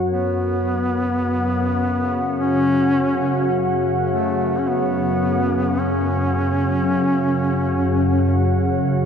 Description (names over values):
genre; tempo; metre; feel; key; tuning
dark ambient drone; 53 BPM; 4/4; straight; unclear; A4 = 436 Hz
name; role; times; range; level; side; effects
deep dark ambient pad; sustained chords; 0.0-9.1 s; F#4 to F#5; -24 LUFS; right 1 dB; chorus, built-in reverb
organ-like drone; drone; 0.0-9.1 s; F#2 to C#3; -21 LUFS; left 1 dB; ensemble chorus, built-in reverb
warm duduk; melody; 0.1-8.6 s; A3 to C#4; -22 LUFS; equal; ping-pong delay
room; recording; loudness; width
wet cathedral reverb, RT60 5.0 s; none; -17 LUFS; side -7 dB against mid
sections
0.1-9.1 A section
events
none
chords
0.1 F#5